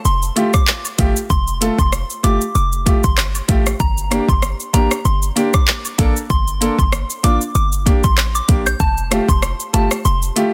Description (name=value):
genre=dancehall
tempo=96 BPM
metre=4/4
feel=swing 56% on 16ths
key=G minor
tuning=A4 = 441 Hz
part: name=soft synth bell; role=melody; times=0.1-10.2 s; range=A5 to G6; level=-25 LUFS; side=equal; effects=chorus, delay
part: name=short 808-style bass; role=bass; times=0.1-10.3 s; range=F1 to Bb1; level=-21 LUFS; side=equal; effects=none
part: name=afro-pop drum kit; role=drums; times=0.1-10.5 s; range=handclaps, hi-hat, kick drum, rim click, shaker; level=-19 LUFS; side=equal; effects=none
part: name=clear concert grand piano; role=accompaniment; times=0.4-10.5 s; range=A3 to A4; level=-23 LUFS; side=equal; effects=sidechain pumping
part: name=cabasa and woodblock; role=percussion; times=0.4-10.5 s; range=none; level=-35 LUFS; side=equal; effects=none
room=little or no reverb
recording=dense, heavily limited modern master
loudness=-16 LUFS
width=mono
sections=0.0-10.5 A section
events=none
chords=0.0 Fadd9; 3.8 Gm; 8.8 Fadd9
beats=0.05 0.68 | 1.30 1.93 2.55 3.18 | 3.80 4.43 5.05 5.68 | 6.30 6.93 7.55 8.18 | 8.80 9.43 10.05